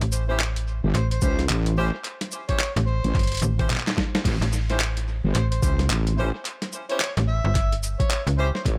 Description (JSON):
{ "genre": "glitch hop", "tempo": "109 BPM", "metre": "4/4", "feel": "swing 61% on 16ths", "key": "A minor", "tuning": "A4 = 440 Hz", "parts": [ { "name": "slap-like FM bass", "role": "bass", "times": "0.0-8.5 s", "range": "G1 to C#2", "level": "-26 LUFS", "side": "equal", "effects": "none" }, { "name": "boom bap sampler-style drum kit", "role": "drums", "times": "0.0-8.8 s", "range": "crash cymbal, handclaps, hi-hat, shaker, snare drum, toms", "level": "-31 LUFS", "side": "equal", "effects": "overdrive, tape echo" }, { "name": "bright horn section", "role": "stabs", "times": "0.3-8.5 s", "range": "C#4 to B#4", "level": "-34 LUFS", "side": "equal", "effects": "sidechain pumping, tape echo" }, { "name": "wobble bass", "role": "bass", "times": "0.8-8.8 s", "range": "G1 to C#2", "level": "-25 LUFS", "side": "equal", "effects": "chorus, tube saturation" }, { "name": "overdriven harmonica", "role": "melody", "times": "1.0-8.6 s", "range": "B#4 to E5", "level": "-36 LUFS", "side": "equal", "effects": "tape echo" }, { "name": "electronic kick drum", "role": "drums", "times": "1.2-8.8 s", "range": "none", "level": "-27 LUFS", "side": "equal", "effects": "overdrive" } ], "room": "digital ambience", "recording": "echo-heavy mix", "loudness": "-24 LUFS", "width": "mono", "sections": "0.0-8.8 A section", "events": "drum fill 3.4-4.3", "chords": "0.0 A7#9" }